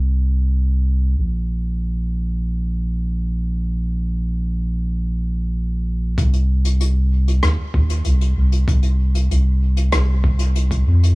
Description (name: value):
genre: ambient dub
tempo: 96 BPM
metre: 4/4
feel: straight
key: C minor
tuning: A4 = 436 Hz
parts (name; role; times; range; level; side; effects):
- soft dub sub bass; bass; 0.0-11.1 s; Bb1 to F2; -17 LUFS; equal; none
- electronic kick drum; drums; 6.2-10.8 s; none; -21 LUFS; equal; none
- vintage brush drum kit; drums; 6.2-11.2 s; hi-hat, rim click; -26 LUFS; left 1 dB; dub echo
room: little or no reverb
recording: small room ambience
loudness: -17 LUFS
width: side -23 dB against mid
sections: 0.0-6.2 A section; 6.2-11.2 B section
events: none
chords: none